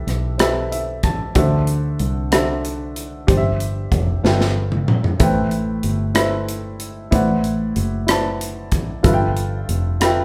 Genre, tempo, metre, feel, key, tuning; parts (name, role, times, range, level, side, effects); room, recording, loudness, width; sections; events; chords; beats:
slow gospel; 62 BPM (dotted quarters); 6/8; straight; A4 = 440 Hz
warm baby grand piano; accompaniment; 0.0-10.2 s; G2 to A5; -24 LUFS; equal
fingered electric bass; bass; 0.0-10.2 s; F1 to D2; -25 LUFS; equal
modern studio drum kit; drums; 0.1-10.2 s; hi-hat, kick drum, rim click, snare drum, toms; -22 LUFS; equal
moderate large studio reverb, RT60 0.9 s; band playing live in one room; -19 LUFS; mono
0.0-10.2 A section
grand piano fill 0.4-1.4; drum fill 4.2-5.2
0.0 Am9; 1.4 D9; 3.3 C/G; 4.2 G13; 5.2 Am9; 7.1 D13; 9.1 G13
0.40 | 1.36 2.32 | 3.29 4.25 | 5.21 6.17 | 7.13 8.09 | 9.05 10.01